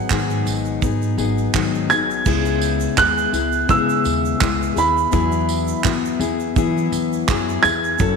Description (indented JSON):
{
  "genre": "acoustic pop",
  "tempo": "84 BPM",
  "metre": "4/4",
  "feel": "swing 55% on 16ths",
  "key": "C# minor",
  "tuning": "A4 = 440 Hz",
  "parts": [
    { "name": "clear upright piano", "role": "melody", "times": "0.0-8.2 s", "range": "F#5 to G#6", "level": "-20 LUFS", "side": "right 4 dB", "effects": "none" },
    { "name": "fingerpicked plugged-in steel-string acoustic guitar", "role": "accompaniment", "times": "0.0-8.2 s", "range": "G#2 to A4", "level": "-21 LUFS", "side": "left 8 dB", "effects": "none" },
    { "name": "upright bass", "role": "bass", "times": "0.1-8.2 s", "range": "F#1 to E3", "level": "-24 LUFS", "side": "right 2 dB", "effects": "none" },
    { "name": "modern studio drum kit", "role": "drums", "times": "0.1-8.2 s", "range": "crash cymbal, handclaps, kick drum, tambourine", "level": "-23 LUFS", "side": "right 5 dB", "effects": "none" },
    { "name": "egg shaker", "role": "percussion", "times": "0.1-8.2 s", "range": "none", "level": "-38 LUFS", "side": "right 17 dB", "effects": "none" }
  ],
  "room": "moderate echo chamber reverb, RT60 2.3 s",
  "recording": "1960s-style stereo with parts hard left and right",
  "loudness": "-16 LUFS",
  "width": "side -5 dB against mid",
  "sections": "0.0-2.3 A section; 2.3-8.2 B section",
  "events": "none",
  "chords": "0.0 G#m7; 2.3 C#m7; 5.1 Eadd9",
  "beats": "0.11 0.83 1.54 | 2.26 2.98 3.70 4.42 | 5.13 5.85 6.56 7.28 | 8.00"
}